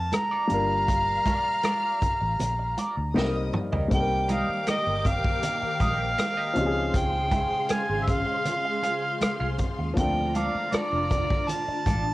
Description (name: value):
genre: lush 1970s-style soul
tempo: 79 BPM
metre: 4/4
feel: straight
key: unclear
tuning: A4 = 439 Hz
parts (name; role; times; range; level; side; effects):
- mellow harmonica; melody; 0.0-12.1 s; D5 to Bb5; -27 LUFS; equal; cassette tape
- rich studio string section; second line; 0.0-12.1 s; F4 to F6; -36 LUFS; left 1 dB; cassette tape
- dark baby grand piano; accompaniment; 0.0-12.1 s; F3 to Bb4; -31 LUFS; left 2 dB; cassette tape
- vintage muted fingered electric bass; bass; 0.0-12.1 s; F1 to F2; -30 LUFS; equal; none
- electric guitar at the edge of break-up; riff; 0.1-12.1 s; F4 to F5; -35 LUFS; right 2 dB; wah, phaser, cassette tape
- vintage drum kit; drums; 0.1-12.0 s; hi-hat, kick drum, rim click, snare drum, toms; -29 LUFS; equal; cassette tape
- congas; percussion; 0.1-12.0 s; none; -34 LUFS; right 2 dB; none
- phased string machine; sustained chords; 4.4-12.1 s; Db3 to C5; -35 LUFS; left 1 dB; ensemble chorus, phaser, cassette tape
room: light reverb, studio reverb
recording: home recording on cassette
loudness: -23 LUFS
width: side -18 dB against mid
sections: 0.0-3.9 A section; 3.9-12.1 B section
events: drum fill 3.2-3.9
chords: 0.0 Bbmaj7/F; 0.5 Gm7; 3.2 Cm7; 6.6 Dbmaj7; 10.0 Bbmaj7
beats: 0.12 | 0.88 1.64 2.40 3.15 | 3.91 4.67 5.43 6.18 | 6.94 7.70 8.46 9.21 | 9.97 10.73 11.48